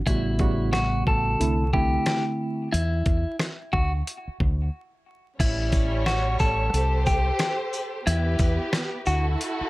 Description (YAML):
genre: hip hop, boom-bap hip-hop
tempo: 90 BPM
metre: 4/4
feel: swing 62% on 16ths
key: unclear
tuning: A4 = 440 Hz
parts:
  - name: clean electric guitar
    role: melody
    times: 0.1-9.3 s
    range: E4 to A4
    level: -28 LUFS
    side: left 1 dB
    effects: spring reverb, high-pass filter, low-pass filter, plate reverb, tape echo
  - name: mellow tine electric piano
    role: accompaniment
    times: 0.1-2.7 s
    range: C#3 to F#4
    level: -26 LUFS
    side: right 2 dB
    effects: medium stereo tremolo, cassette tape, high-pass filter, low-pass filter
  - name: deep dub fingered electric bass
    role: bass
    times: 0.1-9.6 s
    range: A1 to E2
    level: -25 LUFS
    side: equal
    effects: none
  - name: dusty soul sampler-style drum kit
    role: drums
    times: 0.1-9.6 s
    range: crash cymbal, hi-hat, kick drum, rim click, shaker, snare drum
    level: -25 LUFS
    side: equal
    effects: none
  - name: warm studio string section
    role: stabs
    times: 5.4-9.7 s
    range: G3 to C#5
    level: -30 LUFS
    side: right 1 dB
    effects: high-pass filter, low-pass filter, tape echo
  - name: sleigh bells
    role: percussion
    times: 5.4-9.6 s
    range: none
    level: -43 LUFS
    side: left 6 dB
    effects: none
room: light reverb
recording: vinyl crackle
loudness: -22 LUFS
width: side -19 dB against mid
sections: 0.0-5.4 A section; 5.4-9.7 B section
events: break 2.7-5.4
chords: 0.1 A13; 1.4 C69; 2.7 N.C.; 5.4 A7; 6.7 C5; 8.1 Em; 9.1 Dadd9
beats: | 0.07 0.73 1.40 2.07 | 2.73 3.40 4.07 4.73 | 5.40 6.07 6.73 7.40 | 8.07 8.73 9.40